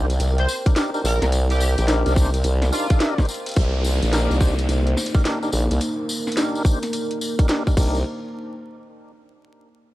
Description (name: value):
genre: glitch hop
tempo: 107 BPM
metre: 4/4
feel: swing 64% on 16ths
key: C minor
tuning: A4 = 438 Hz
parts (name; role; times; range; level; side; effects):
- dark analog pad; sustained chords; 0.0-8.0 s; Bb3 to G5; -29 LUFS; equal; chorus, sidechain pumping
- tonewheel organ; stabs; 0.0-8.0 s; D4 to C5; -29 LUFS; equal; overdrive, chorus vibrato, slow rotary speaker, sidechain pumping, low-pass filter, analog delay
- formant-sweep wobble bass; bass; 0.0-8.0 s; Bb1 to C2; -19 LUFS; equal; chorus, tube saturation
- drum and bass drum kit; drums; 0.1-7.9 s; crash cymbal, hi-hat, snare drum; -26 LUFS; equal; none
- tambourine; percussion; 0.1-8.0 s; none; -32 LUFS; left 3 dB; none
- sync lead; melody; 0.4-3.2 s; F4 to C5; -30 LUFS; equal; ensemble chorus, analog delay
- electronic kick drum; drums; 0.7-7.9 s; none; -17 LUFS; equal; none
- downlifter; sound effects; 3.6-8.1 s; none; -34 LUFS; equal; none
room: digital ambience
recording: dry, gritty hardware recording, vinyl crackle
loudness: -18 LUFS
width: side -16 dB against mid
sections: 0.0-3.6 A section; 3.6-8.1 B section; 8.1-9.9 C section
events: drop 0.0-3.6; filter sweep on tonewheel organ 3.6-8.1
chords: 0.0 Cm7; 8.1 N.C.